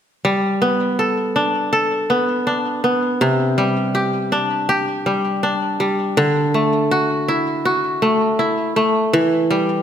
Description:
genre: folktronica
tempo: 81 BPM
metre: 4/4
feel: straight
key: G major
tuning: A4 = 440 Hz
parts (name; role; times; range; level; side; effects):
- kora; solo; 0.2-9.8 s; C3 to A4; -16 LUFS; equal; none
room: wet scoring stage reverb, RT60 1.5 s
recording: none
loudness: -16 LUFS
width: side -8 dB against mid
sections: 0.2-9.8 A section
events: none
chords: 0.2 Gadd9; 3.2 Csus2; 6.2 Dadd9; 9.1 Em

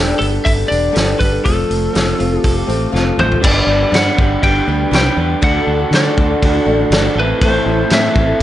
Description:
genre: folk rock and heartland rock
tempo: 121 BPM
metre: 4/4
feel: straight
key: G major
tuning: A4 = 440 Hz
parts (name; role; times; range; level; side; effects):
- lightly driven lead guitar; melody; 0.0-8.4 s; A4 to G5; -19 LUFS; left 1 dB; plate reverb, tape echo
- picked old ladder-braced acoustic guitar; accompaniment; 0.0-8.4 s; A2 to B4; -20 LUFS; left 3 dB; none
- electric guitar through a small old amp; riff; 0.0-8.4 s; A2 to B4; -20 LUFS; right 3 dB; none
- fingered electric bass; bass; 0.0-8.4 s; E1 to D3; -18 LUFS; equal; none
- loose indie drum kit; drums; 0.2-8.4 s; crash cymbal, hi-hat, kick drum, snare drum, toms; -17 LUFS; equal; none
room: light reverb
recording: nothing above 10.7 kHz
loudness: -12 LUFS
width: side -13 dB against mid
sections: 0.0-3.4 A section; 3.4-8.4 B section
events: drum fill 2.9-3.4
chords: 0.0 Gadd9; 1.4 F; 3.4 G; 5.4 D; 7.2 Am

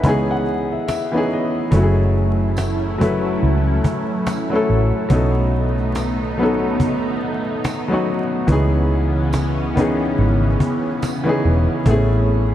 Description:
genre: lo-fi hip hop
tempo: 71 BPM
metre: 4/4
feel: swing 59% on 16ths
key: unclear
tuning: A4 = 438 Hz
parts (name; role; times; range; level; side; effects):
- felt-muted upright piano; accompaniment; 0.0-12.5 s; D#3 to G#5; -20 LUFS; left 1 dB; cassette tape, low-pass filter
- vintage muted fingered electric bass; bass; 0.0-12.5 s; E1 to C#2; -19 LUFS; equal; none
- cajon; drums; 0.0-12.1 s; none; -24 LUFS; equal; vintage 12-bit sampler grit
- tambourine; percussion; 0.9-11.3 s; none; -45 LUFS; right 5 dB; none
- lush unison pad; sustained chords; 1.7-12.5 s; C#3 to E4; -24 LUFS; equal; chorus, phaser, low-pass filter
room: moderate cathedral reverb, RT60 5.5 s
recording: dreamy mix soaked in reverb, vinyl crackle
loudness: -16 LUFS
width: side -12 dB against mid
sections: 0.0-1.7 A section; 1.7-12.5 B section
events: felt piano fill 0.0-1.7; hi-hats muted 1.7-12.5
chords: 0.0 C#m7; 1.7 F#m7; 5.1 B7; 8.5 C#m7; 11.9 Amaj9

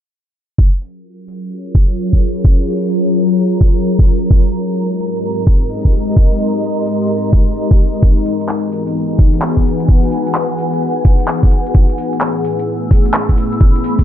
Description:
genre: UK garage, two-step garage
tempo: 129 BPM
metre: 4/4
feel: swing 64% on 16ths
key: F# major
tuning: A4 = 440 Hz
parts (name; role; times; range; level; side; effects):
- ethereal airy pad; sustained chords; 1.3-14.0 s; G#2 to A#4; -20 LUFS; left 1 dB; ensemble chorus, built-in reverb, sidechain pumping
- electronic kick drum; drums; 0.6-14.0 s; none; -10 LUFS; equal; none
- ethereal airy pad; texture; 1.3-14.0 s; E3 to E6; -19 LUFS; left 1 dB; ensemble chorus, built-in reverb, sidechain pumping
- garage drum kit; drums; 0.8-14.0 s; handclaps, hi-hat; -19 LUFS; equal; none
room: little or no reverb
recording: low-pass filter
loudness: -12 LUFS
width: side -11 dB against mid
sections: 0.6-14.0 A section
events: filter sweep on ambient pad 0.6-14.0; filter sweep 0.6-14.0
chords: 0.6 F#maj9; 4.3 G#maj9; 8.0 Emaj9; 11.7 Amaj9

